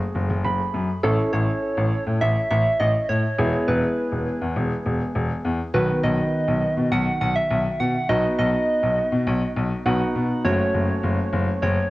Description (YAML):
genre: synth-pop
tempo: 102 BPM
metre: 4/4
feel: straight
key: unclear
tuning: A4 = 440 Hz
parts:
  - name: dark grand piano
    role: accompaniment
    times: 0.0-11.9 s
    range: D#3 to B5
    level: -26 LUFS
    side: right 1 dB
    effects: none
  - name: warm baby grand piano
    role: bass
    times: 0.1-11.8 s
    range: E1 to B2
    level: -23 LUFS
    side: left 1 dB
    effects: none
  - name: soft struck synth lead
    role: melody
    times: 1.0-11.9 s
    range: A4 to F#5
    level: -24 LUFS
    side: right 1 dB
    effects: chorus, tremolo, analog delay
room: light reverb, small room ambience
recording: worn, warbling old tape, cassette tape, warbly pitch drift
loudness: -20 LUFS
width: side -18 dB against mid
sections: 0.0-1.0 A section; 1.0-10.4 B section; 10.4-11.9 C section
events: grand piano fill 0.2-1.0, 9.6-10.4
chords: 0.0 F#madd9; 1.0 A; 3.4 E; 5.7 B; 10.4 F#m